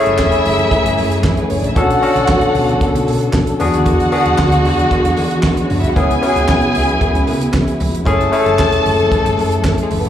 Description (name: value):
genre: disco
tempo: 114 BPM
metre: 4/4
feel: straight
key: F# minor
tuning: A4 = 438 Hz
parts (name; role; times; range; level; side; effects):
- dark studio string section; second line; 0.0-10.1 s; G#3 to A5; -19 LUFS; right 1 dB; slapback echo
- barky tine electric piano; accompaniment; 0.0-10.1 s; A3 to A4; -16 LUFS; left 3 dB; overdrive, slapback echo
- dark studio string section; sustained chords; 0.0-10.1 s; C#3 to A4; -22 LUFS; right 1 dB; none
- hollow-body short-scale fingered electric bass; bass; 0.1-10.1 s; E1 to E3; -19 LUFS; right 1 dB; none
- damped 70s drum kit; drums; 0.1-10.1 s; handclaps, hi-hat, kick drum, snare drum; -20 LUFS; right 1 dB; none
- cowbell; percussion; 0.2-9.8 s; none; -31 LUFS; right 4 dB; none
- congas; percussion; 0.3-10.0 s; none; -27 LUFS; equal; none
room: light reverb, small room ambience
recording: live gig heard through the venue's PA, club reverb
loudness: -12 LUFS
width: side -10 dB against mid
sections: 0.0-10.1 A section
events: none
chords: 0.0 F#m9; 1.8 Bm7; 3.6 E9; 6.0 C#m7; 8.1 F#m9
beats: 0.19 0.72 1.24 | 1.76 2.29 2.81 3.34 | 3.86 4.39 4.91 5.44 | 5.96 6.49 7.01 7.54 | 8.07 8.59 9.12 9.65